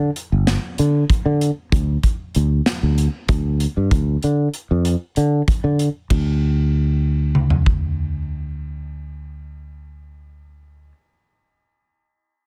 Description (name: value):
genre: progressive instrumental, band music in an uneven meter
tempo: 192 BPM (eighths)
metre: 7/8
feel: straight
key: unclear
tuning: A4 = 438 Hz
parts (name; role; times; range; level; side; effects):
- sustaining fretless electric bass; bass; 0.0-10.9 s; G1 to D3; -21 LUFS; equal; none
- modern studio drum kit; drums; 0.2-7.8 s; hi-hat, kick drum, ride cymbal, snare drum, toms; -22 LUFS; equal; none
room: little or no reverb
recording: dense, heavily limited modern master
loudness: -19 LUFS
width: mono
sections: 0.0-6.1 A section; 6.1-10.5 B section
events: none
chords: none